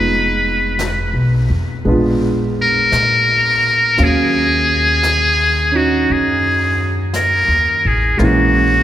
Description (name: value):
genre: jazz ballad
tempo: 57 BPM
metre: 4/4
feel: swing 66% on 8ths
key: Eb minor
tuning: A4 = 440 Hz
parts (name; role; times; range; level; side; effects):
- trumpet with metal mute; melody; 0.0-8.8 s; F4 to Cb5; -14 LUFS; left 1 dB; none
- warm baby grand piano; accompaniment; 0.0-8.8 s; Fb3 to F5; -19 LUFS; right 2 dB; none
- upright bass; bass; 0.0-8.8 s; F1 to Bb2; -19 LUFS; left 1 dB; none
- jazz brush drum kit; drums; 0.8-8.8 s; brushed snare drum, hi-hat, snare drum; -31 LUFS; left 3 dB; none
room: wet cathedral reverb, RT60 5.2 s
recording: recorded in a church or concert hall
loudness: -12 LUFS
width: side -12 dB against mid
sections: 0.0-8.8 A section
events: none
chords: 0.0 Fm7b5; 1.9 Bb7b9; 4.0 Ebm9; 8.2 Bbm7b5